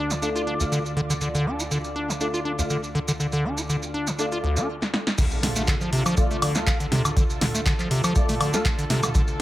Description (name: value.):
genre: acid house.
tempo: 121 BPM.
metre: 4/4.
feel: swing 54% on 16ths.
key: D minor pentatonic.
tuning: A4 = 440 Hz.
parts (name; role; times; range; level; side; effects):
lush unison pad; sustained chords; 0.0-9.4 s; D2 to D5; -31 LUFS; equal; chorus, sidechain pumping.
acid bass, square; riff; 0.0-9.4 s; D2 to F4; -26 LUFS; equal; digital delay.
maracas; percussion; 0.1-9.4 s; none; -32 LUFS; right 2 dB; none.
percussive organ stab; stabs; 0.2-8.8 s; A3 to F5; -30 LUFS; left 1 dB; ensemble chorus, digital delay.
punchy analog drum machine; drums; 4.8-9.3 s; crash cymbal, handclaps, hi-hat, snare drum, toms, woodblock; -26 LUFS; equal; low-pass filter on snare, low-pass filter on hats, low-pass filter on cymbals, low-pass filter on toms, low-pass filter on perc.
electronic kick drum; drums; 5.2-9.3 s; none; -23 LUFS; equal; overdrive.
impact; sound effects; 5.2-7.2 s; none; -34 LUFS; equal; none.
room: light reverb.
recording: none.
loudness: -21 LUFS.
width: side -15 dB against mid.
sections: 0.0-5.2 A section; 5.2-9.4 B section.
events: drum fill 4.8-5.2; drop 5.2-9.4; impact 5.2-7.2.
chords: 0.0 Dm.